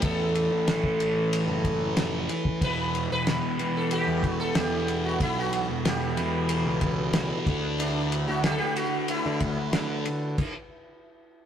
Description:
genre	psychedelic rock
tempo	93 BPM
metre	4/4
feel	straight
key	E dorian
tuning	A4 = 441 Hz
part	sitar	melody	0.0-11.5 s	D4 to B4	-30 LUFS	equal	none
part	hand-pumped harmonium	sustained chords	0.0-10.4 s	E3 to A4	-35 LUFS	right 4 dB	none
part	fuzz guitar	riff	0.0-10.1 s	E2 to D4	-29 LUFS	left 1 dB	distortion, phaser
part	fuzz picked electric bass	bass	0.0-10.3 s	E1 to D3	-31 LUFS	equal	overdrive
part	cloth-damped thuddy drum kit	drums	0.0-10.5 s	crash cymbal, kick drum, ride cymbal, snare drum	-30 LUFS	equal	none
room	moderate stone room reverb, RT60 1.4 s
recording	rough rehearsal-room recording, tube saturation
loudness	-24 LUFS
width	side -9 dB against mid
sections	0.0-11.5 A section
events	stop 10.4-11.5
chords	0.0 A; 2.6 Em; 7.5 Dadd9

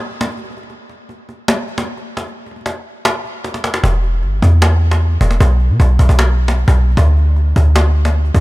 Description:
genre	hip hop, trap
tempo	153 BPM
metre	4/4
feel	half-time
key	E minor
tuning	A4 = 440 Hz
part	cajon	drums	0.1-8.4 s	none	-19 LUFS	equal	none
part	clean 808-style bass	bass	3.8-8.4 s	E1 to B2	-11 LUFS	equal	none
room	small room ambience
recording	none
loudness	-12 LUFS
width	side -20 dB against mid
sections	0.0-8.4 A section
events	break 0.0-3.8; drum fill 3.4-3.8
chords	none

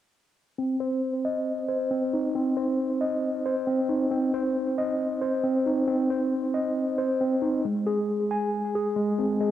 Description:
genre	hip hop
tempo	136 BPM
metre	4/4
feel	half-time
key	C minor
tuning	A4 = 440 Hz
part	mellow tine electric piano	arpeggios	0.6-9.5 s	Ab3 to Ab5	-24 LUFS	equal	medium stereo tremolo, low-pass filter, cassette tape, analog delay
room	moderate booth ambience, RT60 0.2 s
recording	home recording on cassette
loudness	-24 LUFS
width	side -11 dB against mid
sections	0.6-9.5 A section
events	filter sweep on tine electric piano 0.6-9.5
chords	0.6 Cm; 7.6 Ab

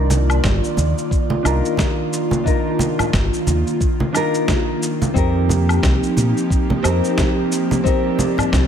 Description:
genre	sunset chillout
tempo	89 BPM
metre	4/4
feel	swing 58% on 16ths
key	C minor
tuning	A4 = 440 Hz
part	nylon-string guitar	accompaniment	0.0-8.7 s	C4 to Bb4	-22 LUFS	left 1 dB	auto-pan, low-pass filter, ping-pong delay
part	airy breathy pad	sustained chords	0.0-8.7 s	Eb3 to D5	-22 LUFS	right 1 dB	chorus
part	fingered electric bass	bass	0.0-8.7 s	G1 to Bb2	-18 LUFS	equal	none
part	electronic shaker, woodblock and snare drum	drums	0.1-8.7 s	none	-24 LUFS	left 1 dB	none
part	congas	percussion	0.1-8.5 s	none	-23 LUFS	right 2 dB	none
part	electronic kick drum	drums	0.4-8.7 s	none	-20 LUFS	equal	none
room	light reverb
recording	none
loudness	-16 LUFS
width	side -8 dB against mid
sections	0.0-8.7 A section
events	none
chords	0.0 Cm11 (rootless); 5.2 F9sus4

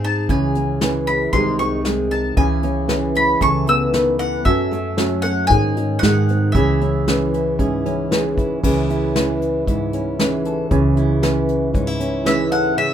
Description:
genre	acoustic folk duo or small band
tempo	115 BPM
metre	4/4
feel	straight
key	C# minor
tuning	A4 = 437 Hz
part	bowl-back mandolin	melody	0.0-8.1, 12.3-12.9 s	E5 to E6	-21 LUFS	left 1 dB	none
part	fingerpicked steel-string acoustic guitar	accompaniment	0.0-12.9 s	F#2 to A4	-21 LUFS	left 1 dB	none
part	upright bass	bass	0.0-12.7 s	B#1 to G#2	-23 LUFS	equal	none
part	felt-muted upright piano	arpeggios	0.3-12.8 s	D#3 to C#4	-23 LUFS	right 4 dB	none
part	soft brush drum kit	drums	0.3-12.6 s	crash cymbal, hi-hat, kick drum, snare drum	-23 LUFS	equal	none
room	moderate small room reverb, RT60 0.5 s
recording	minimal, uncompressed stereo recording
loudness	-16 LUFS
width	side -9 dB against mid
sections	0.0-8.6 A section; 8.6-12.8 B section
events	none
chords	0.3 C#m; 1.3 G#/B#; 2.4 C#m; 3.4 Aadd9/C#; 4.5 F#m; 5.5 G#sus4; 6.0 G#; 6.5 C#m

